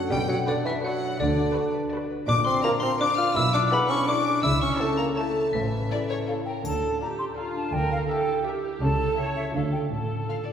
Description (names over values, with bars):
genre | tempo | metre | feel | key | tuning
cinematic, playful, whimsical film cue | 166 BPM | 3/4 | straight | D minor | A4 = 440 Hz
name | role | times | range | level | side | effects
rich chamber violin section | melody | 0.0-10.5 s | A4 to F5 | -39 LUFS | left 4 dB | none
xylophone with plastic mallets | melody | 0.0-6.2 s | D5 to F6 | -27 LUFS | left 3 dB | none
rich chamber violin section | second line | 0.0-10.5 s | F4 to F6 | -34 LUFS | equal | none
mellow bassoon | accompaniment | 0.0-6.3 s | D3 to F4 | -27 LUFS | right 1 dB | none
rich chamber viola section | accompaniment | 0.0-10.5 s | E4 to C#5 | -33 LUFS | right 4 dB | none
concert harp | arpeggios | 0.0-10.5 s | F#2 to D5 | -30 LUFS | left 4 dB | none
clear chamber double bass section | bass | 0.1-10.2 s | A1 to D2 | -32 LUFS | right 2 dB | none
warm studio cello section | bass | 0.1-10.2 s | A2 to D3 | -32 LUFS | right 2 dB | none
hollow concert flute | second line | 6.3-10.5 s | E5 to C6 | -31 LUFS | equal | none
triangle | percussion | 6.6-7.3 s | none | -47 LUFS | left 4 dB | none
room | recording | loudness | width
wet scoring stage reverb, RT60 1.9 s | heard from further back in the room | -22 LUFS | side -8 dB against mid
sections
0.0-6.6 A section; 6.6-10.5 B section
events
none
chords
0.1 Bm; 1.2 Bm/D; 2.3 Bb; 3.4 E7/B; 4.4 A/C#; 5.5 A; 6.6 Dm; 7.7 Em7b5/D; 8.8 A7/C#; 9.5 Dm; 9.9 Dm/A